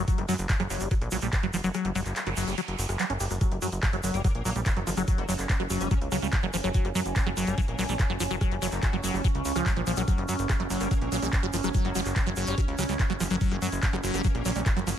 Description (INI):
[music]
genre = psychedelic trance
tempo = 144 BPM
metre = 4/4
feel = straight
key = F# major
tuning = A4 = 441 Hz
[part]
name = liquid acid bass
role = riff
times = 0.0-14.9 s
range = E#3 to G4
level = -31 LUFS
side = moving between left 5 dB and right 5 dB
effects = phaser, auto-pan, vintage 12-bit sampler grit, sidechain pumping, ping-pong delay
[part]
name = plucky analog bass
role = bass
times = 0.0-14.9 s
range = F#1 to F#2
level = -31 LUFS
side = equal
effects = none
[part]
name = electronic kick drum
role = drums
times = 0.1-14.7 s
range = none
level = -26 LUFS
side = equal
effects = none
[part]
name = techno drum kit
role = drums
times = 0.1-15.0 s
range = handclaps, hi-hat, rim click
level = -35 LUFS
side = equal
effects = none
[part]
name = egg shaker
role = percussion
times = 0.1-15.0 s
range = none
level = -38 LUFS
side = right 2 dB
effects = none
[part]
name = noise sweep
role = sound effects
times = 1.9-3.4 s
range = none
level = -40 LUFS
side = right 5 dB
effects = none
[part]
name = overtone-sweeping drone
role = sustained chords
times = 4.5-15.0 s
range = C#4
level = -34 LUFS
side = right 3 dB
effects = chorus, built-in reverb, sidechain pumping
[part]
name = metallic wobble bass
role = second line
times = 4.1-14.5 s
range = F#3 to C#4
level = -41 LUFS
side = left 2 dB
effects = distortion, ensemble chorus, sidechain pumping, high-pass filter, ping-pong delay
[sound]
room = little or no reverb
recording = none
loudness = -25 LUFS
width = side -10 dB against mid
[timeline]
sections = 0.0-15.0 A section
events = kick drops out 1.7-3.4; noise sweep 1.9-3.4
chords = 0.0 F#5